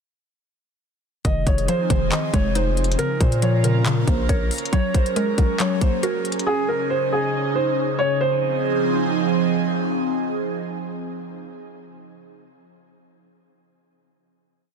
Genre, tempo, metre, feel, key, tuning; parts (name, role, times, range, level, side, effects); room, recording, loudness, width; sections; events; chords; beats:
hip hop, trap; 138 BPM; 4/4; half-time; F phrygian; A4 = 440 Hz
felt-muted upright piano; melody; 1.2-9.5 s; Ab4 to Eb5; -24 LUFS; right 2 dB; low-pass filter, digital delay
mallet-like synth pluck; accompaniment; 1.2-6.5 s; Db3 to Db5; -26 LUFS; right 1 dB; chorus, phaser, low-pass filter
airy breathy pad; sustained chords; 1.5-11.6 s; Db3 to Bb4; -24 LUFS; right 2 dB; chorus, phaser
distorted 808-style bass; bass; 1.2-4.5 s; F1 to Bb2; -22 LUFS; left 1 dB; distortion
trap drum kit; drums; 1.2-6.5 s; handclaps, hi-hat, kick drum; -22 LUFS; left 1 dB
light reverb; dense, heavily limited modern master; -19 LUFS; side -6 dB against mid
1.2-8.2 hook; 8.2-11.7 final chord
1.2 Fm7; 3.0 Bbm; 4.7 Gbadd9; 6.5 Dbsus2; 8.2 Fm7
| 1.25 1.68 2.12 2.55 | 2.99 3.42 3.86 4.29 | 4.73 5.16 5.60 6.03 | 6.47 6.90 7.34 7.77 | 8.21 8.64 9.07 9.51 | 9.94 10.38 10.81 11.25